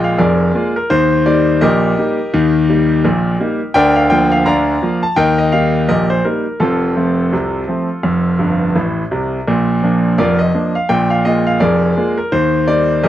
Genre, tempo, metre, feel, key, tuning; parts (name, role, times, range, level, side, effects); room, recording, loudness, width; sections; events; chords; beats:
ragtime piano; 84 BPM; 2/4; swing 58% on 16ths; Bb major; A4 = 440 Hz
bright concert grand piano; solo; 0.0-13.1 s; F1 to Bb5; -12 LUFS; equal
light reverb; close, detailed microphones; -12 LUFS; side -12 dB against mid
0.0-13.1 A section
grand piano fill 8.4-9.5
0.0 Bb5; 0.9 Eb; 3.7 Bb/D; 5.2 Eb; 6.6 F; 9.5 Bb; 10.9 Bb5; 12.3 Eb
0.18 | 0.90 1.61 | 2.32 3.04 | 3.75 4.46 | 5.17 5.88 | 6.60 7.32 | 8.03 8.75 | 9.47 10.18 | 10.89 11.61 | 12.32 13.03